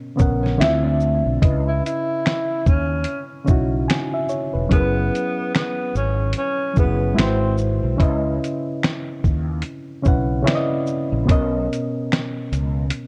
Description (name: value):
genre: lo-fi hip hop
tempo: 73 BPM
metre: 4/4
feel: swing 59% on 16ths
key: C# dorian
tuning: A4 = 440 Hz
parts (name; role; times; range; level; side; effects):
- reed electric piano; accompaniment; 0.0-13.1 s; B2 to G#5; -26 LUFS; equal; low-pass filter
- fretless electric bass; bass; 0.2-12.9 s; E1 to D#2; -24 LUFS; equal; ensemble chorus
- dusty soul sampler-style drum kit; drums; 0.2-13.1 s; finger snaps, hi-hat, kick drum, shaker, snare drum; -22 LUFS; equal; vintage 12-bit sampler grit
- nylon-string guitar; second line; 0.4-1.4 s; C#4 to E4; -28 LUFS; equal; low-pass filter, tape echo
- breathy tenor saxophone; melody; 1.7-7.6 s; B3 to E4; -27 LUFS; equal; low-pass filter
room: light reverb, digital ambience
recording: cassette tape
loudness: -21 LUFS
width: mono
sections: 0.0-13.1 A section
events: none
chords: 0.0 Bmaj9; 0.6 Dm9; 1.4 C#m9; 4.7 F#7sus4; 7.2 G#7alt; 8.0 C#m9; 11.3 Bmaj9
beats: 0.60 | 1.42 2.24 3.06 3.88 | 4.71 5.53 6.35 7.17 | 8.00 8.82 9.64 10.46 | 11.28 12.10 12.93